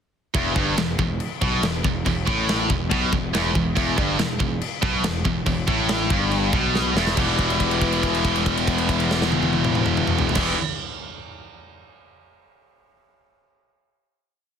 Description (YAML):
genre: heavy metal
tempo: 140 BPM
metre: 4/4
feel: straight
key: E minor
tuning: A4 = 444 Hz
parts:
  - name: distorted electric guitar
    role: riff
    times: 0.3-10.6 s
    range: E2 to E3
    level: -26 LUFS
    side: left 11 dB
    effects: overdrive
  - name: heavy high-gain guitar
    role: riff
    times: 0.3-10.6 s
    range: E2 to E3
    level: -25 LUFS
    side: right 11 dB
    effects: distortion
  - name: high-gain distorted guitar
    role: riff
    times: 0.3-10.6 s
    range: E2 to E4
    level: -28 LUFS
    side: left 2 dB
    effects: distortion
  - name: fuzz picked electric bass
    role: bass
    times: 0.3-10.5 s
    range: E1 to B1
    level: -27 LUFS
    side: equal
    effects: overdrive
  - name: tight metal drum kit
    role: drums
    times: 0.3-10.5 s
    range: china cymbal, crash cymbal, kick drum, snare drum, toms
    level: -25 LUFS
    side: equal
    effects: none
room: studio reverb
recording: dense, heavily limited modern master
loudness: -19 LUFS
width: side -7 dB against mid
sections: 0.3-7.2 riff; 7.2-10.6 final chord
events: drum fill 6.7-7.2; held note 7.2-10.4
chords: 0.3 Em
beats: | 0.34 0.77 1.20 1.63 | 2.05 2.48 2.91 3.33 | 3.76 4.18 4.61 5.04 | 5.46 5.89 6.32 6.74 | 7.17 7.60 8.03 8.46 | 8.89 9.32 9.75 10.18